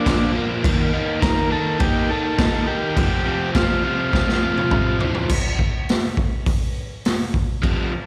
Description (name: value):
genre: garage rock duo or trio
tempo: 103 BPM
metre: 4/4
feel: straight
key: F mixolydian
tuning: A4 = 440 Hz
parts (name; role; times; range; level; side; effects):
- combo organ; melody; 0.0-5.0 s; D4 to Bb4; -26 LUFS; equal; slapback echo
- biting overdriven guitar; riff; 0.0-7.9 s; F2 to Eb4; -25 LUFS; equal; slapback echo
- raw garage drum kit; drums; 0.1-7.8 s; crash cymbal, hi-hat, kick drum, snare drum, toms; -23 LUFS; equal; none
room: light reverb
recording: live gig heard through the venue's PA, recital hall reverb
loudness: -20 LUFS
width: mono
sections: 0.0-5.3 A section; 5.3-7.6 B section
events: drum fill 4.1-5.3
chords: 0.0 Bb; 0.6 Eb5; 3.0 F5; 5.3 N.C.